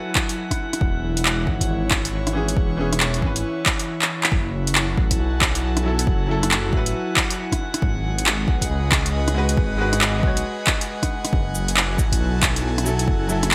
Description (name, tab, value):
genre	future garage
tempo	137 BPM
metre	4/4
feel	swing 62% on 16ths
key	F# dorian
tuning	A4 = 440 Hz
part	clear upright piano	accompaniment	0.0-13.5 s	E3 to C#5	-30 LUFS	equal	vintage 12-bit sampler grit, sidechain pumping, delay
part	airy breathy pad	sustained chords	0.0-13.5 s	E3 to G#5	-31 LUFS	equal	chorus, sidechain pumping
part	drifting glass-harmonics texture	texture	0.0-13.5 s	F#5	-37 LUFS	equal	chorus, built-in reverb
part	deep house drum kit	drums	0.2-13.5 s	cabasa, handclaps, hi-hat, rim click	-24 LUFS	equal	overdrive, small room reverb, gated reverb
part	electronic kick drum	drums	0.2-13.2 s	none	-25 LUFS	equal	overdrive, small room reverb
part	dark detuned saw bass	bass	0.8-13.5 s	E1 to C#2	-26 LUFS	equal	tube saturation, sidechain pumping
room	light reverb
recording	bright 1980s-style digital production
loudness	-21 LUFS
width	mono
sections	0.0-4.3 A section; 4.3-13.5 B section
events	drum fill 4.0-4.3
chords	0.0 F#m7; 0.8 E6; 4.3 F#m7; 7.8 G#m7; 11.3 F#m7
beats	0.38 | 0.81 1.25 1.69 2.13 | 2.57 3.00 3.44 3.88 | 4.32 4.76 5.19 5.63 | 6.07 6.51 6.95 7.38 | 7.82 8.26 8.70 9.14 | 9.57 10.01 10.45 10.89 | 11.33 11.76 12.20 12.64 | 13.08 13.52